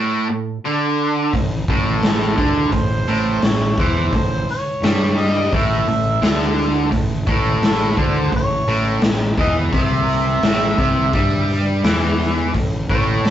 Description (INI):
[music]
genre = blues rock power trio and southern rock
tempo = 86 BPM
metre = 4/4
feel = straight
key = unclear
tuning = A4 = 440 Hz
[part]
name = overdriven electric guitar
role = riff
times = 0.0-13.3 s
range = A2 to G3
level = -20 LUFS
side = right 1 dB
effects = none
[part]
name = fuzz fingered electric bass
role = bass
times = 1.3-13.3 s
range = A1 to G2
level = -22 LUFS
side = equal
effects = overdrive
[part]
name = raw garage drum kit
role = drums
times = 1.3-13.3 s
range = hi-hat, kick drum, snare drum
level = -20 LUFS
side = equal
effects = none
[part]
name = mellow harmonica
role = melody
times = 2.1-13.3 s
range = A4 to E5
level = -23 LUFS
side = right 1 dB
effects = overdrive
[sound]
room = moderate studio reverb, RT60 0.5 s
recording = rough rehearsal-room recording, tube saturation, nothing above 7.8 kHz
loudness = -15 LUFS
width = side -11 dB against mid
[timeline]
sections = 0.0-13.3 A section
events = none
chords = 0.0 A5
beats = 0.63 | 1.33 2.03 2.73 3.43 | 4.13 4.83 5.53 6.22 | 6.92 7.63 8.33 9.03 | 9.73 10.44 11.14 11.84 | 12.55 13.25